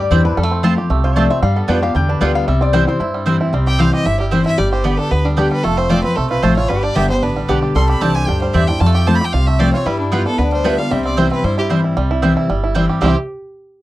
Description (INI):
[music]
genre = bluegrass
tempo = 228 BPM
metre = 4/4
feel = straight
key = C major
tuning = A4 = 439 Hz
[part]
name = lap resonator guitar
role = second line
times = 0.0-11.8 s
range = C4 to G5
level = -23 LUFS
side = left 5 dB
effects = none
[part]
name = picked steel-string acoustic guitar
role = accompaniment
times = 0.0-13.1 s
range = F2 to G4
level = -17 LUFS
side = left 2 dB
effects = none
[part]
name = bluegrass banjo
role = arpeggios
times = 0.0-13.2 s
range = G3 to G4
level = -22 LUFS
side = right 4 dB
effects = none
[part]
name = upright bass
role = bass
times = 0.0-13.1 s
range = F1 to G2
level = -19 LUFS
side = equal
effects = none
[part]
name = mandolin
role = stabs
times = 0.1-13.1 s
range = B3 to A5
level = -22 LUFS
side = right 5 dB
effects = none
[part]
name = clear fiddle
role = melody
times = 3.7-13.1 s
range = D4 to C6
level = -22 LUFS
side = equal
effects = none
[sound]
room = little or no reverb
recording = dry, close 1970s-style studio recording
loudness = -13 LUFS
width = side -16 dB against mid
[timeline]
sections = 0.0-3.5 A section; 3.5-12.0 B section; 12.0-13.0 C section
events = resonator guitar played with a steel bar solo 0.0-3.5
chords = 0.4 F; 1.4 G7; 2.5 C; 4.6 G; 5.6 F; 6.7 G; 7.8 Cadd9; 8.8 F; 9.9 G7; 10.9 C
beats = 0.12 | 0.38 0.64 0.90 1.16 | 1.43 1.69 1.95 2.21 | 2.48 2.74 3.00 3.27 | 3.53 3.79 4.06 4.32 | 4.58 4.85 5.11 5.38 | 5.64 5.91 6.17 6.43 | 6.70 6.96 7.23 7.49 | 7.75 8.02 8.28 8.55 | 8.81 9.07 9.34 9.60 | 9.86 10.13 10.39 10.65 | 10.92 11.18 11.44 11.71 | 11.97 12.23 12.49 12.76 | 13.02